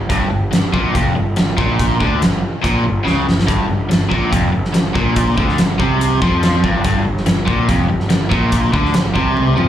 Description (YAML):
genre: classic rock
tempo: 143 BPM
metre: 4/4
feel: straight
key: unclear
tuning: A4 = 439 Hz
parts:
  - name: overdriven electric guitar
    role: riff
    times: 0.0-9.7 s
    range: F2 to F3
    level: -17 LUFS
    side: equal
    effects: slapback echo
  - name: fuzz picked electric bass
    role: bass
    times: 0.0-9.7 s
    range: F1 to F2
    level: -19 LUFS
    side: equal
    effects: overdrive
  - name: big rock drum kit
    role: drums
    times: 0.1-9.7 s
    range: hi-hat, kick drum, snare drum, toms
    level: -18 LUFS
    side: equal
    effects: none
room: moderate club ambience, RT60 0.5 s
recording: live gig heard through the venue's PA, club reverb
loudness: -13 LUFS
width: side -11 dB against mid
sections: 0.0-9.7 A section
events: drum fill 3.1-3.5, 9.4-9.7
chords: 0.0 G5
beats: | 0.10 0.53 0.95 1.37 | 1.79 2.22 2.64 3.06 | 3.48 3.90 4.32 4.75 | 5.17 5.59 6.01 6.43 | 6.84 7.26 7.68 8.10 | 8.52 8.94 9.36